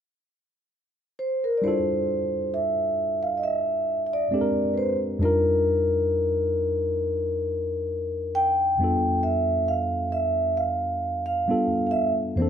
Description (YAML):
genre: R&B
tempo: 67 BPM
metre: 4/4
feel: swing 54% on 16ths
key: F major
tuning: A4 = 440 Hz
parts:
  - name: vibraphone with soft mallets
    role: melody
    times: 1.2-12.5 s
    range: Bb4 to G5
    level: -24 LUFS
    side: equal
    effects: none
  - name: tine electric piano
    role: accompaniment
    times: 1.6-12.5 s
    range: F2 to Bb4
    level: -27 LUFS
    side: equal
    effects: auto-pan
room: moderate echo chamber reverb, RT60 1.6 s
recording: none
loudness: -22 LUFS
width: side -8 dB against mid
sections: 0.0-1.6 A section; 1.6-12.5 B section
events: none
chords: 0.0 N.C.; 1.6 Fmaj13; 4.3 Bb13; 5.2 Ebmaj9/F; 8.8 G9/F; 11.5 G13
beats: 0.73 | 1.62 2.52 3.42 4.31 | 5.21 6.10 7.00 7.89 | 8.79 9.68 10.58 11.47 | 12.37